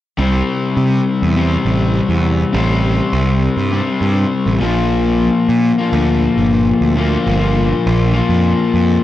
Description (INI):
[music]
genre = rock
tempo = 102 BPM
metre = 4/4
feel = straight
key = C mixolydian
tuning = A4 = 441 Hz
[part]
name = overdriven electric guitar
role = riff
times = 0.2-9.0 s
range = Bb2 to C4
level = -15 LUFS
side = left 4 dB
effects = none
[part]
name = fuzz picked electric bass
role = bass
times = 0.2-9.0 s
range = G1 to C3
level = -16 LUFS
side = right 2 dB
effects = overdrive
[sound]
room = light reverb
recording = dry, close 1970s-style studio recording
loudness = -13 LUFS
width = side -13 dB against mid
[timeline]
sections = 0.2-9.0 A section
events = none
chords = 0.2 C; 4.6 Bb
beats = | 0.19 0.78 1.37 1.96 | 2.55 3.14 3.73 4.32 | 4.91 5.50 6.09 6.68 | 7.27 7.86 8.45